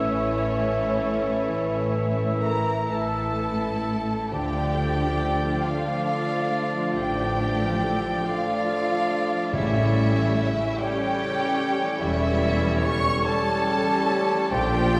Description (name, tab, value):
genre	classical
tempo	40-49 BPM (dotted quarters)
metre	12/8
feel	rubato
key	unclear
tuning	A4 = 439 Hz
part	warm studio violin section	melody	0.0-15.0 s	C#5 to C#6	-34 LUFS	equal	none
part	clear oboe	second line	0.0-15.0 s	C#5 to E5	-35 LUFS	equal	none
part	large flute ensemble	second line	0.0-15.0 s	C#5 to C#6	-34 LUFS	equal	none
part	warm clarinet	second line	0.0-15.0 s	F4 to A4	-38 LUFS	equal	none
part	warm studio violin section	second line	0.0-15.0 s	C#4 to C#5	-35 LUFS	equal	none
part	rich studio viola section	accompaniment	0.0-15.0 s	C#3 to E4	-36 LUFS	equal	none
part	warm bassoon	accompaniment	0.0-15.0 s	E3 to G3	-33 LUFS	equal	none
part	warm French horn section	sustained chords	0.0-15.0 s	F3 to E4	-34 LUFS	equal	none
part	concert harp	arpeggios	0.0-15.0 s	A2 to E5	-36 LUFS	equal	none
part	clear studio double bass section	bass	0.0-15.0 s	E1 to D2	-33 LUFS	equal	none
part	rich studio cello section	bass	0.0-15.0 s	E2 to D3	-34 LUFS	equal	none
part	timpani	percussion	9.5-10.7 s	A2	-33 LUFS	equal	none
room	wet recital hall reverb, RT60 1.8 s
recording	recorded in a church or concert hall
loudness	-24 LUFS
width	mono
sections	0.0-15.0 A section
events	none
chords	0.0 A; 4.3 Dm; 9.5 A7